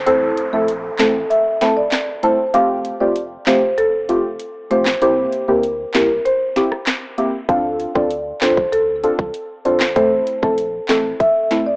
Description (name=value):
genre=dancehall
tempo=97 BPM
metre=4/4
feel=straight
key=unclear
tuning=A4 = 440 Hz
part: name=warm sub bass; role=bass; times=0.0-11.1 s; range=E1 to D2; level=-40 LUFS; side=equal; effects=none
part: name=downlifter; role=sound effects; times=0.0-2.5 s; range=none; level=-32 LUFS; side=right 1 dB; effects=none
part: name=marimba with medium mallets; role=melody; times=0.1-11.8 s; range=A4 to F5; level=-17 LUFS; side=equal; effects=none
part: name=deep mellow chord stab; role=accompaniment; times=0.1-11.7 s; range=A3 to A4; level=-19 LUFS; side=equal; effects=chorus, phaser, cassette tape
part: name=island pop drum kit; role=drums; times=0.1-11.7 s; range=handclaps, hi-hat, kick drum, rim click, snare drum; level=-21 LUFS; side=equal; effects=vintage 12-bit sampler grit, cassette tape
room=light reverb, digital ambience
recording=home recording on cassette, small speaker sound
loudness=-15 LUFS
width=side -27 dB against mid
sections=0.0-11.8 A section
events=break 0.0-7.5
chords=0.1 Am; 2.5 Fadd9; 5.0 C7; 7.5 Dm7; 10.0 Am